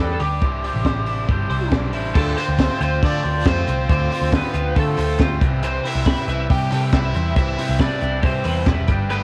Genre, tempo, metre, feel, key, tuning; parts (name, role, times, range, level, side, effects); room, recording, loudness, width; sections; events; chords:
jangly indie pop; 138 BPM; 4/4; straight; A4 = 440 Hz
lead guitar through a small cranked amp; melody; 0.0-9.2 s; G4 to G5; -29 LUFS; equal; overdrive, cassette tape
raw garage guitar; accompaniment; 0.0-9.2 s; C3 to C5; -30 LUFS; equal; overdrive, cassette tape
twelve-string electric guitar; arpeggios; 0.0-9.2 s; C3 to C5; -30 LUFS; equal; phaser, cassette tape
vintage muted picked electric bass; bass; 0.0-9.2 s; E1 to D3; -25 LUFS; equal
compact cocktail drum kit; drums; 0.2-9.2 s; crash cymbal, hi-hat, kick drum, snare drum; -23 LUFS; equal; cassette tape
brilliant trumpet; second line; 2.2-9.2 s; A3 to G4; -34 LUFS; equal; cassette tape, analog delay
group handclap; percussion; 2.6-8.8 s; -40 LUFS; equal
little or no reverb; home recording on cassette; -20 LUFS; mono
0.0-2.2 A section; 2.2-9.2 B section
0.4 Cadd9; 2.2 Dm7; 5.4 Cmaj7